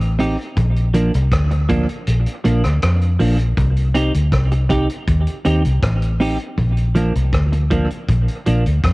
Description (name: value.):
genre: dub reggae.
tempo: 80 BPM.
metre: 4/4.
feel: straight.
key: unclear.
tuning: A4 = 440 Hz.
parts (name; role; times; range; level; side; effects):
vintage muted fingered electric bass; bass; 0.0-8.9 s; A1 to F2; -16 LUFS; equal; tube saturation.
vintage drum kit; drums; 0.0-8.9 s; hi-hat, kick drum, rim click; -23 LUFS; equal; cassette tape.
clean electric guitar; accompaniment; 0.2-8.6 s; F3 to G4; -21 LUFS; right 1 dB; lush chorus, high-pass filter, cassette tape, dub echo.
room: studio reverb.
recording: home recording on cassette.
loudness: -15 LUFS.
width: side -23 dB against mid.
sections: 0.0-8.9 A section.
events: kick muted 2.1-3.6; filter sweep on clean electric guitar 6.6-8.9.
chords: 0.0 Cm; 0.6 Bb; 3.6 Cm; 6.6 Bb.